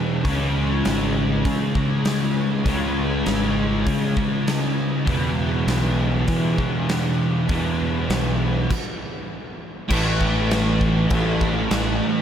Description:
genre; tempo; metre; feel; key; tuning
rock, shoegaze and dream pop; 99 BPM; 4/4; straight; A major; A4 = 440 Hz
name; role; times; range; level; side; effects
fuzz guitar; riff; 0.0-12.2 s; E2 to C#4; -21 LUFS; equal; distortion, ensemble chorus
huge arena drum kit; drums; 0.2-11.9 s; crash cymbal, hi-hat, kick drum, snare drum; -26 LUFS; equal; none
growling fingered electric bass; bass; 0.3-12.0 s; G#1 to E3; -25 LUFS; equal; overdrive
room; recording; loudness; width
wet huge ambient reverb, RT60 7.9 s; dreamy mix soaked in reverb; -19 LUFS; side -9 dB against mid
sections
0.0-9.9 A section; 9.9-12.2 B section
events
stop 8.7-9.9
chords
0.3 C#5; 5.1 E5; 9.9 A5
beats
| 0.25 0.85 1.46 2.06 | 2.66 3.27 3.87 4.47 | 5.08 5.68 6.29 6.89 | 7.49 8.10 8.70 9.30 | 9.91 10.51 11.11 11.71

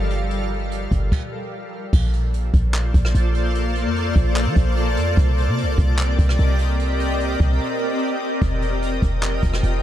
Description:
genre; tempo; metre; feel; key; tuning
hip hop, atmospheric cloud-rap; 148 BPM; 4/4; half-time; unclear; A4 = 438 Hz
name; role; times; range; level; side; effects
shimmering ambient pad; sustained chords; 0.0-9.8 s; F3 to G5; -24 LUFS; left 1 dB; chorus, built-in reverb, sidechain pumping
clean 808-style bass; bass; 0.0-9.8 s; F1 to F3; -20 LUFS; equal; none
jazz brush drum kit; drums; 0.1-9.7 s; crash cymbal, handclaps, hi-hat, kick drum, rim click; -22 LUFS; equal; none
room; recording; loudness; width
little or no reverb; none; -18 LUFS; side -12 dB against mid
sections
0.0-1.9 A section; 1.9-9.8 B section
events
stop 1.1-1.9; break 7.6-8.4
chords
0.0 Gm9; 1.9 Bbmaj9; 5.2 Cm9; 8.4 F9sus4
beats
| 0.31 0.71 1.12 1.52 | 1.93 2.34 2.74 3.15 | 3.55 3.96 4.36 4.77 | 5.17 5.58 5.98 6.39 | 6.79 7.20 7.61 8.01 | 8.42 8.82 9.23 9.63

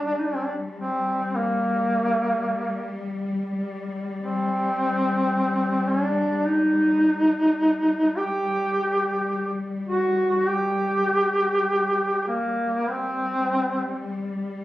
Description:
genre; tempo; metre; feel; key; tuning
caucasian folk, Caucasian lament; 48-54 BPM; 4/4; rubato; G harmonic minor; A4 = 440 Hz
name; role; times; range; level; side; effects
warm duduk; melody; 0.0-14.1 s; Bb3 to G4; -22 LUFS; equal; none
warm chamber cello section; drone; 0.0-14.6 s; G3; -29 LUFS; left 2 dB; none
room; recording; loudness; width
moderate recital hall reverb, RT60 1.5 s; recorded on a phone in the room, studio reverb; -21 LUFS; side -15 dB against mid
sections
0.0-13.5 A section; 13.5-14.6 B section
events
none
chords
none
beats
0.80 1.93 3.07 | 4.20 5.33 6.47 7.61 | 8.73 9.89 11.08 12.30 | 13.51

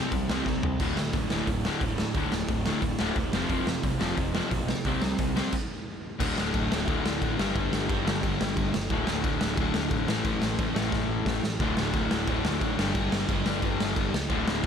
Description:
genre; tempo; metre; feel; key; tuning
punk rock; 178 BPM; 4/4; straight; D minor; A4 = 440 Hz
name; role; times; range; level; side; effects
cranked stack guitar; riff; 0.0-5.5, 11.6-14.7 s; D2 to C4; -34 LUFS; right 2 dB; overdrive
crunchy overdriven guitar; riff; 0.0-14.7 s; D2 to C4; -31 LUFS; left 13 dB; none
sludgy distorted guitar; riff; 0.0-14.7 s; D2 to C4; -33 LUFS; right 11 dB; overdrive
fuzz picked electric bass; bass; 0.1-14.7 s; D1 to F2; -34 LUFS; equal; overdrive
raw garage drum kit; drums; 0.1-14.7 s; crash cymbal, hi-hat, kick drum, snare drum, toms; -29 LUFS; equal; none
room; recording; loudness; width
little or no reverb; none; -25 LUFS; side -7 dB against mid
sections
0.0-6.2 A section; 6.2-14.7 B section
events
drum fill 0.5-0.8, 10.9-11.6; stop 5.5-6.2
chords
0.0 C5; 0.8 D5; 3.3 F5; 4.9 C5; 6.2 D5; 7.4 G5; 8.9 D5; 10.1 A5; 11.6 D5; 12.8 G5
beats
0.13 0.47 | 0.80 1.14 1.48 1.82 | 2.16 2.50 2.83 3.17 | 3.51 3.85 4.18 4.52 | 4.86 5.20 5.54 5.87 | 6.21 6.55 6.88 7.22 | 7.56 7.90 8.23 8.57 | 8.91 9.25 9.58 9.92 | 10.26 10.60 10.93 11.27 | 11.61 11.95 12.28 12.62 | 12.96 13.30 13.63 13.97 | 14.31 14.65

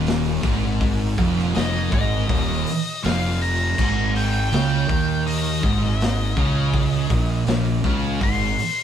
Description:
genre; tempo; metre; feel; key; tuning
stoner and doom metal; 81 BPM; 4/4; straight; unclear; A4 = 440 Hz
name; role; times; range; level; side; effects
sludgy distorted guitar; riff; 0.0-8.6 s; Eb2 to Eb3; -28 LUFS; equal; overdrive
thick fuzz guitar; riff; 0.0-8.6 s; Eb2 to Eb3; -28 LUFS; left 2 dB; distortion
thick fuzz guitar; riff; 0.0-8.6 s; Eb2 to Eb3; -25 LUFS; right 6 dB; distortion
fuzz fingered electric bass; bass; 0.0-8.6 s; Eb1 to Eb2; -25 LUFS; left 1 dB; overdrive
raw garage drum kit; drums; 0.1-8.8 s; crash cymbal, hi-hat, kick drum, snare drum; -25 LUFS; left 1 dB; none
octave-fuzz lead guitar; melody; 1.6-8.8 s; Eb5 to C6; -26 LUFS; left 3 dB; wah, distortion
room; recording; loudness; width
moderate studio reverb, RT60 0.5 s; band playing live in one room; -18 LUFS; side -9 dB against mid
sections
0.0-8.8 A section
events
lead electric guitar solo 0.0-8.8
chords
0.0 Eb5; 3.8 Ab5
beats
0.07 | 0.81 1.55 2.29 3.03 | 3.77 4.51 5.25 5.99 | 6.73 7.47 8.21

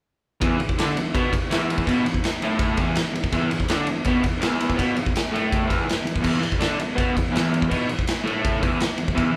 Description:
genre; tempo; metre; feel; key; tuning
garage rock duo or trio; 164 BPM; 4/4; straight; unclear; A4 = 440 Hz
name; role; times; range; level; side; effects
crunchy overdriven guitar; riff; 0.4-9.4 s; E2 to D4; -25 LUFS; equal; spring reverb
raw garage drum kit; drums; 0.4-9.3 s; crash cymbal, kick drum, ride cymbal, snare drum; -26 LUFS; equal; none
room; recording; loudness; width
moderate large studio reverb, RT60 0.8 s; band playing live in one room; -23 LUFS; mono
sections
0.4-9.4 A section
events
none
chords
0.4 E5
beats
| 0.41 0.77 1.14 1.50 | 1.86 2.23 2.59 2.96 | 3.32 3.69 4.05 4.42 | 4.78 5.15 5.51 5.88 | 6.24 6.61 6.97 7.34 | 7.71 8.07 8.44 8.81 | 9.17

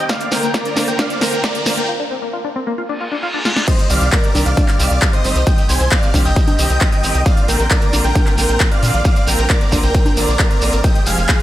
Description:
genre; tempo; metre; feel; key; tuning
uplifting trance; 134 BPM; 4/4; straight; C minor; A4 = 440 Hz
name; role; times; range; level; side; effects
big supersaw lead; melody; 0.0-11.4 s; Ab4 to Ab5; -20 LUFS; right 1 dB; cassette tape, sidechain pumping, low-pass filter, dub echo
clear studio string section; sustained chords; 0.0-11.4 s; D3 to C5; -24 LUFS; right 1 dB; vintage 12-bit sampler grit, sidechain pumping
tight sequenced synth; arpeggios; 0.0-3.6 s; Bb3 to F4; -24 LUFS; left 3 dB; chorus, phaser, sidechain pumping, dub echo
riser and reverse cymbal; sound effects; 0.0-3.7 s; none; -25 LUFS; right 1 dB; none
big-room dance drum kit; drums; 0.1-11.4 s; congas, crash cymbal, handclaps, hi-hat, ride cymbal, snare drum; -21 LUFS; equal; sidechain pumping on hats, sidechain pumping on perc, sidechain pumping on cymbals
electronic kick drum; drums; 0.1-11.4 s; none; -15 LUFS; equal; high-pass filter on kick, high-pass filter on room
shekere; percussion; 0.1-11.4 s; none; -27 LUFS; right 2 dB; none
tight sequencer bass; bass; 3.9-11.3 s; F1 to Bb2; -17 LUFS; equal; sidechain pumping
room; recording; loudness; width
light reverb, digital ambience; none; -13 LUFS; side -14 dB against mid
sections
0.0-3.7 A section; 3.7-11.4 B section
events
build-up 0.0-3.7; drum fill 0.0-1.9, 3.5; riser 0.0-1.9; filter sweep on supersaw synth 0.0-3.7; filter sweep on synth arpeggio sound 0.0-3.7; break 1.9-3.7; reverse cymbal 2.9-3.7; drop 3.7-11.4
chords
0.1 Bbadd9; 3.7 Cm; 7.3 Bbadd9; 10.8 Fmadd9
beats
| 0.10 0.54 0.99 1.44 | 1.89 2.33 2.78 3.23 | 3.68 4.12 4.57 5.02 | 5.47 5.92 6.36 6.81 | 7.26 7.71 8.15 8.60 | 9.05 9.50 9.95 10.39 | 10.84 11.29

